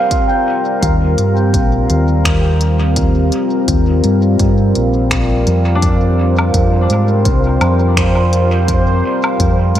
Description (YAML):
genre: ambient dub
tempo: 84 BPM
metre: 4/4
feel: swing 56% on 16ths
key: unclear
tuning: A4 = 440 Hz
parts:
  - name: deep dark ambient pad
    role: sustained chords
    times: 0.0-9.8 s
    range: G3 to F5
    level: -16 LUFS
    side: left 1 dB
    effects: chorus, built-in reverb
  - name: Celtic harp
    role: arpeggios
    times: 0.0-1.4, 5.8-8.6 s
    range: D4 to G5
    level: -23 LUFS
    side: left 1 dB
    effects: low-pass filter, diffuse ambient delay
  - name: electronic kick drum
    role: drums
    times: 0.1-9.6 s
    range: none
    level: -18 LUFS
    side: equal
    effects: none
  - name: organic electronic drum kit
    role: drums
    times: 0.1-9.8 s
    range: finger snaps, hi-hat, woodblock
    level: -22 LUFS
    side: equal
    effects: dub echo
  - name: fingered electric bass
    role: bass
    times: 0.8-9.8 s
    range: Bb1 to Ab2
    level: -13 LUFS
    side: equal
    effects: tube saturation
  - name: bubbling stepped-filter texture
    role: texture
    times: 6.0-9.8 s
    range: C5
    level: -21 LUFS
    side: right 3 dB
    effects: chorus, built-in reverb
room: moderate lush hall reverb, RT60 3.0 s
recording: dreamy mix soaked in reverb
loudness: -11 LUFS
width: side -11 dB against mid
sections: 0.0-9.8 A section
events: none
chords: 0.1 Ebadd9; 5.8 Fsus2